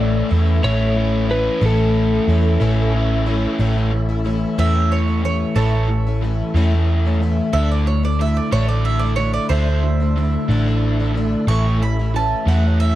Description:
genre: rock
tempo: 61 BPM (dotted quarters)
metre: 6/8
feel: straight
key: A major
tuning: A4 = 441 Hz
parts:
  - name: electric slide guitar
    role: melody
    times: 0.0-2.9 s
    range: A4 to E5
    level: -22 LUFS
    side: right 1 dB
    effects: none
  - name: picked plugged-in twelve-string acoustic guitar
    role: accompaniment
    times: 0.0-13.0 s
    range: A2 to E4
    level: -24 LUFS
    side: left 6 dB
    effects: wide subtle chorus
  - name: bright tonewheel organ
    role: sustained chords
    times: 0.0-13.0 s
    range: A3 to A4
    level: -32 LUFS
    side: equal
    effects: chorus vibrato, fast rotary speaker
  - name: raw garage guitar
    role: riff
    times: 0.0-13.0 s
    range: A2 to E4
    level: -24 LUFS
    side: right 2 dB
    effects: overdrive
  - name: hollow-body short-scale picked electric bass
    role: bass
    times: 0.0-13.0 s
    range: A1 to E2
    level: -18 LUFS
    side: equal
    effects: none
  - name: bowl-back mandolin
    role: second line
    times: 4.6-13.0 s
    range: A4 to C#6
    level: -24 LUFS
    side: right 6 dB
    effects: none
room: light reverb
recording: dark, warm production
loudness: -16 LUFS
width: side -14 dB against mid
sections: 0.0-3.6 A section; 3.6-13.0 B section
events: mandolin solo 3.6-13.0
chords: 0.0 A; 7.5 Dsus2; 11.5 A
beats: 0.64 | 1.62 2.61 | 3.59 4.58 | 5.57 6.56 | 7.54 8.53 | 9.52 10.51 | 11.49 12.48

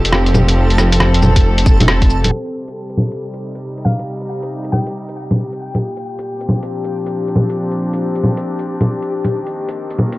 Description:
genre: future garage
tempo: 137 BPM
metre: 4/4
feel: swing 64% on 16ths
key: C dorian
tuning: A4 = 440 Hz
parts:
  - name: warm studio string section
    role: sustained chords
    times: 0.0-10.2 s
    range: Bb2 to A4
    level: -22 LUFS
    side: equal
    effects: sidechain pumping
  - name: swelling detuned saw bass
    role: bass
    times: 0.0-2.3 s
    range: F1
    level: -14 LUFS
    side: equal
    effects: tube saturation, sidechain pumping
  - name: backwards swelling texture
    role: texture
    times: 0.0-10.2 s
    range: G4 to A4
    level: -25 LUFS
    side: left 2 dB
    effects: built-in reverb
  - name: lo-fi sampler-style drum kit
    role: drums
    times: 0.1-10.2 s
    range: bongos, cabasa, hi-hat, rim click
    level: -16 LUFS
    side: equal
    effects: small room ambience
  - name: electronic kick drum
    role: drums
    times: 1.4-2.1 s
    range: none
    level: -12 LUFS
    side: equal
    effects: small room ambience
  - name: hollow square pluck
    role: melody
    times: 3.8-5.3 s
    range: F5 to G5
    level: -30 LUFS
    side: left 2 dB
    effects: chorus, tape echo
room: little or no reverb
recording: dry, gritty hardware recording, cassette tape, low-pass filter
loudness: -14 LUFS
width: side -19 dB against mid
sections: 0.0-2.3 A section; 2.3-10.2 B section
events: filter sweep 2.3-10.2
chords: 0.0 F; 2.3 Cm; 5.8 Bb; 9.3 Ebmaj7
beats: 0.13 | 0.57 1.00 1.44 1.88 | 2.32 2.76 3.19 3.63 | 4.07 4.51 4.95 5.38 | 5.82 6.26 6.70 7.14 | 7.57 8.01 8.45 8.89 | 9.32 9.76

